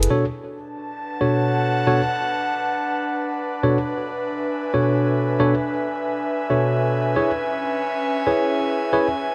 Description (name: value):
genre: UK garage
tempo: 136 BPM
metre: 4/4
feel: swing 64% on 16ths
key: B dorian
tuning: A4 = 440 Hz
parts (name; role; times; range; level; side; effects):
- tine electric piano; stabs; 0.0-9.1 s; B2 to C#5; -23 LUFS; equal; digital delay
- airy breathy pad; texture; 0.1-9.3 s; C#4 to A5; -26 LUFS; equal; chorus
room: wet lush hall reverb, RT60 1.8 s, digital ambience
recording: none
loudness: -22 LUFS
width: mono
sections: 0.1-9.3 A section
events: none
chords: 0.1 Bm7; 7.2 C#m7